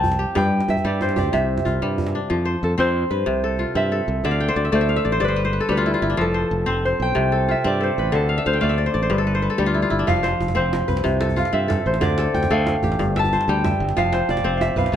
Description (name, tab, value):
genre	west african traditional, West African string and xylophone music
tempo	123 BPM (dotted quarters)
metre	12/8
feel	straight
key	F lydian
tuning	A4 = 440 Hz
part	concert harp	melody	0.0-15.0 s	A4 to A5	-23 LUFS	equal	none
part	kora	arpeggios	0.0-15.0 s	G2 to G5	-22 LUFS	left 2 dB	none
part	modern bright fingered electric bass	bass	0.0-15.0 s	F1 to G2	-24 LUFS	equal	none
part	djembe	percussion	0.0-2.1, 10.1-14.9 s	none	-27 LUFS	right 3 dB	none
room	light reverb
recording	close, detailed microphones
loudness	-18 LUFS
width	side -9 dB against mid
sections	0.0-2.3 A section; 2.3-15.0 B section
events	harp solo 2.3-15.0; kora fill 4.2-6.2, 8.3-10.1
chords	0.4 G; 1.3 C; 2.3 F5; 3.3 C; 4.2 D5; 5.2 G; 6.2 F; 7.2 C5; 8.1 D5; 9.1 G5; 10.1 F5; 11.1 C; 12.0 D5; 13.0 G5; 14.0 F5